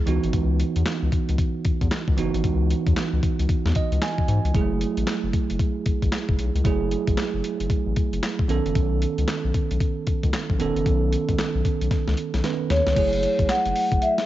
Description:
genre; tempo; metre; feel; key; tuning
R&B, new jack swing; 114 BPM; 4/4; swing 62% on 16ths; F# dorian; A4 = 440 Hz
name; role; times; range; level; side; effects
bell-like tine electric piano; accompaniment; 0.0-14.3 s; D#3 to G#5; -26 LUFS; right 6 dB; auto-pan, cassette tape
round analog bass; bass; 0.1-14.0 s; E1 to G#2; -24 LUFS; left 1 dB; none
dusty soul sampler-style drum kit; drums; 0.1-14.3 s; crash cymbal, handclaps, hi-hat, kick drum, snare drum; -25 LUFS; left 1 dB; cassette tape
vibraphone with soft mallets; melody; 12.7-14.3 s; C#5 to F#5; -21 LUFS; left 1 dB; none
room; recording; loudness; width
little or no reverb; home recording on cassette, nothing above 7.7 kHz; -20 LUFS; side -14 dB against mid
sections
0.0-13.0 A section; 13.0-14.3 B section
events
tine electric piano fill 3.5-4.5; drum fill 11.9-13.0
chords
0.1 C#m11; 4.5 F#m9; 8.5 B9; 13.0 F#m9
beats
| 0.33 0.86 1.39 1.91 | 2.44 2.96 3.49 4.02 | 4.54 5.07 5.60 6.12 | 6.65 7.18 7.70 8.23 | 8.76 9.28 9.81 10.33 | 10.86 11.39 11.91 12.44 | 12.96 13.49 14.02

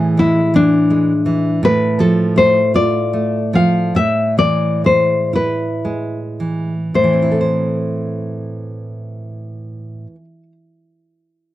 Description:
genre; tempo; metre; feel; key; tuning
romantic duo for nylon-string guitar and classical guitar; 35-55 BPM (dotted quarters); 6/8; rubato; A minor; A4 = 441 Hz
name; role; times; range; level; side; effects
nylon-string guitar; melody; 0.0-10.1 s; D4 to F5; -15 LUFS; left 3 dB; none
nylon-string guitar; accompaniment; 0.0-10.5 s; A2 to C5; -17 LUFS; right 2 dB; none
room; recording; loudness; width
little or no reverb; dry, close 1970s-style studio recording; -13 LUFS; side -14 dB against mid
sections
0.0-7.0 A section; 7.0-10.1 B section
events
slowing down 0.5-7.0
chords
0.0 E7/A; 1.6 Dm/A; 4.0 E/A; 7.0 Am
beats
0.54 | 1.63 2.74 | 3.95 5.33 | 6.95 8.55

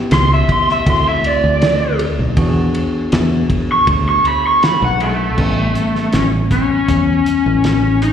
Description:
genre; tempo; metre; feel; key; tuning
straight-eighth soul blues; 80 BPM; 4/4; straight; A mixolydian; A4 = 436 Hz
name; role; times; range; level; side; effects
barky tine electric piano; accompaniment; 0.0-8.1 s; E3 to G#4; -24 LUFS; right 2 dB; slapback echo
lead guitar through a small cranked amp; melody; 0.1-8.1 s; A3 to C#6; -15 LUFS; left 1 dB; overdrive, slapback echo
fingered electric bass; bass; 0.1-8.1 s; A1 to E2; -16 LUFS; equal; none
cloth-damped thuddy drum kit; drums; 0.1-8.1 s; crash cymbal, hi-hat, kick drum, ride cymbal, snare drum; -20 LUFS; equal; none
room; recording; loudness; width
light reverb, small room reverb; live gig heard through the venue's PA, recital hall reverb; -12 LUFS; side -8 dB against mid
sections
0.0-5.4 A section; 5.4-8.1 B section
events
lead electric guitar solo 0.0-5.4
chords
0.0 A9 (rootless); 0.9 D9; 2.4 E9; 5.4 A9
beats
0.11 0.86 1.62 | 2.37 3.12 3.88 4.63 | 5.38 6.13 6.89 7.64

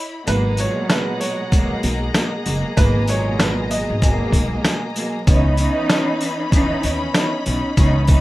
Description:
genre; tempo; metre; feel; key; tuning
hip hop, boom-bap hip-hop; 96 BPM; 4/4; swing 59% on 16ths; G# minor; A4 = 438 Hz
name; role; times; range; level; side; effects
warm studio string section; sustained chords; 0.0-8.2 s; C#4 to B5; -27 LUFS; left 1 dB; high-pass filter, low-pass filter, plate reverb
clear upright piano; melody; 0.3-4.2 s; B4 to D#5; -26 LUFS; right 3 dB; high-pass filter, low-pass filter, plate reverb, tape echo
dark symphonic string section; accompaniment; 0.3-8.2 s; A#2 to D#4; -22 LUFS; equal; high-pass filter, low-pass filter
upright bass; bass; 0.3-8.2 s; F#1 to D#2; -20 LUFS; equal; none
trip hop sampler-style drum kit; drums; 0.3-8.2 s; hi-hat, kick drum, shaker, snare drum; -17 LUFS; equal; none
sleigh bells; percussion; 0.3-8.2 s; none; -32 LUFS; left 1 dB; none
room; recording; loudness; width
light reverb; rough home demo mix, vinyl crackle; -16 LUFS; side -17 dB against mid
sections
0.0-8.2 A section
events
break 0.0; kick muted 0.3-0.9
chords
0.3 G#m9; 5.3 C#m9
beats
| 0.27 0.90 1.52 2.15 | 2.77 3.40 4.02 4.64 | 5.27 5.89 6.52 7.14 | 7.77

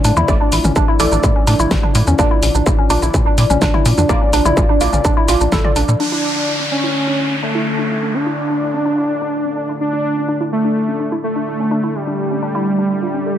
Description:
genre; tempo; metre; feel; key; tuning
melodic techno; 126 BPM; 4/4; straight; D harmonic minor; A4 = 440 Hz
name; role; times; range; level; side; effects
dark analog pad; sustained chords; 0.0-13.4 s; A3 to F5; -26 LUFS; left 3 dB; lush chorus, sidechain pumping
woody wave-folded pluck; arpeggios; 0.0-13.3 s; C#4 to D5; -21 LUFS; right 1 dB; chorus, sidechain pumping, tape echo
filtered dub chord stab; stabs; 0.0-6.0 s; A3 to D5; -23 LUFS; equal; phaser, analog chorus, sidechain pumping, dub echo
tight sequencer bass; bass; 0.0-6.0 s; A1 to Bb2; -16 LUFS; equal; sidechain pumping
analog drone; drone; 0.0-13.4 s; D3 to A3; -27 LUFS; equal; chorus, sidechain pumping
deep house drum kit; drums; 0.0-6.1 s; crash cymbal, hi-hat, shaker, snare drum, toms; -22 LUFS; equal; dub echo
electronic kick drum; drums; 0.3-5.6 s; none; -16 LUFS; equal; distortion
wide unison lead; melody; 6.0-13.4 s; G3 to D4; -18 LUFS; equal; sidechain pumping, dub echo
downlifter; sound effects; 6.0-9.8 s; none; -23 LUFS; equal; none
room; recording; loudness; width
moderate spring reverb, RT60 1.7 s; echo-heavy mix; -14 LUFS; side -10 dB against mid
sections
0.0-6.0 A section; 6.0-13.4 B section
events
none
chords
0.0 Asus4; 2.2 Bb; 6.0 Dm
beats
| 0.28 0.76 1.24 1.71 | 2.19 2.67 3.14 3.62 | 4.09 4.57 5.05 5.52 | 6.00 6.47 6.95 7.43 | 7.90 8.38 8.86 9.33 | 9.81 10.28 10.76 11.24 | 11.71 12.19 12.66 13.14

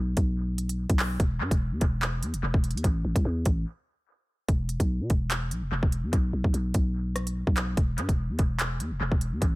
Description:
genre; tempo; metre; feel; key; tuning
hip hop, drill; 146 BPM; 4/4; half-time; E minor; A4 = 440 Hz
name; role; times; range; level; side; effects
growling 808-style bass; bass; 0.0-9.6 s; E1 to B2; -28 LUFS; equal; none
drill drum kit; drums; 0.2-9.5 s; handclaps, hi-hat, kick drum, rim click; -26 LUFS; equal; analog delay
room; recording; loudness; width
little or no reverb; echo-heavy mix; -25 LUFS; side -20 dB against mid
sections
0.0-4.5 A section; 4.5-9.6 B section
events
break 3.7-4.5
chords
none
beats
0.38 0.79 | 1.20 1.61 2.02 2.43 | 2.84 3.25 3.66 4.08 | 4.49 4.90 5.31 5.72 | 6.13 6.54 6.95 7.36 | 7.77 8.18 8.60 9.01 | 9.42

